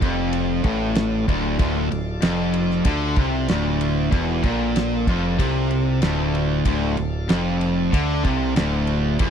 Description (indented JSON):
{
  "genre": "classic rock",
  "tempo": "95 BPM",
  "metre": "4/4",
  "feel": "straight",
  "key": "D minor",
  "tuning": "A4 = 440 Hz",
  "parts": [
    { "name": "bright tonewheel organ", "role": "sustained chords", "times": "0.0-9.3 s", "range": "F4 to F5", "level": "-35 LUFS", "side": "equal", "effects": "slow rotary speaker, overdrive" },
    { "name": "cranked stack guitar", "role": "riff", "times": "0.0-9.3 s", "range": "D2 to D3", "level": "-23 LUFS", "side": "left 9 dB", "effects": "overdrive" },
    { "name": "distorted electric guitar", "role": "riff", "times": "0.0-9.3 s", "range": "D2 to D3", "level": "-24 LUFS", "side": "right 12 dB", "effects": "overdrive" },
    { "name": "growling picked electric bass", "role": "bass", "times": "0.0-9.3 s", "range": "D1 to D2", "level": "-26 LUFS", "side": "equal", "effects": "overdrive" },
    { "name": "damped 70s drum kit", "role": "drums", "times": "0.0-9.3 s", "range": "kick drum, ride cymbal, snare drum", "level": "-23 LUFS", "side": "equal", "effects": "none" }
  ],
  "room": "small room ambience",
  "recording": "dry, close 1970s-style studio recording",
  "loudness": "-19 LUFS",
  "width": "side -8 dB against mid",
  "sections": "0.0-9.3 A section",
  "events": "none",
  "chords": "0.0 Dm"
}